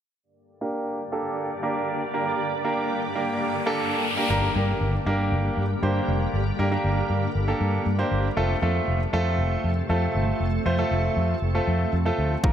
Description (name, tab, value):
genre	dance-pop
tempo	118 BPM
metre	4/4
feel	straight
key	G minor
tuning	A4 = 440 Hz
part	shimmering ambient pad	sustained chords	0.9-12.5 s	G2 to D5	-30 LUFS	equal	chorus, built-in reverb, sidechain pumping, low-pass filter
part	clear concert grand piano	accompaniment	0.6-12.5 s	A3 to C5	-26 LUFS	right 2 dB	sidechain pumping, low-pass filter
part	riser and impact	sound effects	3.3-6.3 s	none	-32 LUFS	left 1 dB	none
part	vintage muted fingered electric bass	bass	4.3-12.5 s	F1 to G2	-24 LUFS	equal	sidechain pumping
part	electronic kick drum	drums	12.4-12.5 s	none	-19 LUFS	equal	none
room	moderate lush hall reverb, RT60 2.0 s, digital ambience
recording	bright 1980s-style digital production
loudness	-22 LUFS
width	side -9 dB against mid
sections	0.2-4.3 A section; 4.3-12.5 B section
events	filter sweep 0.2-4.3; riser 3.3-4.3; impact 4.3-6.3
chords	0.2 Gm; 8.4 F